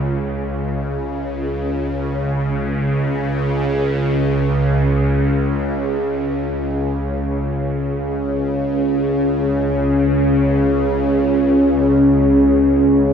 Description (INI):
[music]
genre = dark ambient drone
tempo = free time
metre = none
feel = none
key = unclear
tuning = A4 = 440 Hz
[part]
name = deep dark ambient pad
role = sustained chords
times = 1.3-13.1 s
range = C#4 to C#5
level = -18 LUFS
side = equal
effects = chorus, built-in reverb
[part]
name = bowed-like drone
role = drone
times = 0.0-13.1 s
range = C#2 to C#3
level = -18 LUFS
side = equal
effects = built-in reverb, phaser
[sound]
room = wet huge ambient reverb, RT60 7.6 s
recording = none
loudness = -16 LUFS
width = side -7 dB against mid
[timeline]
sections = 0.0-13.1 A section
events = none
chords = 0.0 C#5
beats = free time